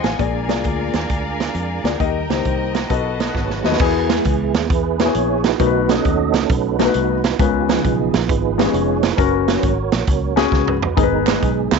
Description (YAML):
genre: uptempo gospel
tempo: 134 BPM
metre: 4/4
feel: swing 66% on 8ths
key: unclear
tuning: A4 = 440 Hz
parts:
  - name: dark grand piano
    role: accompaniment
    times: 0.0-11.7 s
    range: G#2 to Ab5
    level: -20 LUFS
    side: left 14 dB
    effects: none
  - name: clear studio string section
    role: sustained chords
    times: 0.0-3.8 s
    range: Bb4 to C6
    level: -28 LUFS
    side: left 2 dB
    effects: none
  - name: mellow tonewheel organ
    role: sustained chords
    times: 0.0-11.8 s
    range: E#3 to D#5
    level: -22 LUFS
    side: right 14 dB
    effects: fast rotary speaker, chorus vibrato
  - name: fingered electric bass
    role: bass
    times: 0.0-11.8 s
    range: E#1 to F2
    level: -24 LUFS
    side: left 1 dB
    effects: none
  - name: swinging big-band drum kit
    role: drums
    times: 0.0-11.8 s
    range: crash cymbal, hi-hat, kick drum, snare drum, toms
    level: -20 LUFS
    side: right 4 dB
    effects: none
  - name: group handclap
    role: percussion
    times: 11.3-11.8 s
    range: none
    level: -25 LUFS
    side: right 16 dB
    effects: none
room: light reverb, studio ambience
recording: 1960s-style stereo with parts hard left and right, nothing above 7.7 kHz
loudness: -16 LUFS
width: side -5 dB against mid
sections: 0.0-3.8 A section; 3.8-11.8 B section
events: drum fill 3.4-3.8, 10.5-11.0; tonewheel organ solo 3.8-11.8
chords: 0.2 Bb7; 2.0 Eb; 2.9 B7; 3.8 E; 5.6 B7; 7.4 C#7; 9.2 F#; 11.0 G#m